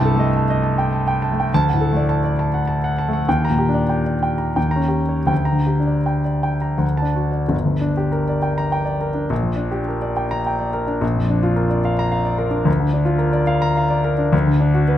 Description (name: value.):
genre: classical, romantic character piece for solo piano.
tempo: 77-112 BPM.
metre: 3/4.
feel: rubato.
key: G minor.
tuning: A4 = 439 Hz.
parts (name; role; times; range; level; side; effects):
warm concert grand piano; solo; 0.0-15.0 s; G1 to Bb5; -17 LUFS; equal; none.
room: moderate recital hall reverb, RT60 1.3 s.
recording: close, detailed microphones.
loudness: -17 LUFS.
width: side -11 dB against mid.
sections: 0.0-7.5 A section; 7.5-15.0 B section.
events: none.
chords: 0.0 Am7b5/C; 1.5 D; 3.3 Ebmaj7; 4.6 Eb7; 5.3 Gm/D; 6.8 D; 7.5 Gm; 9.3 Gm/Bb; 11.0 Bb; 12.7 Bb/D; 14.3 Bm/D.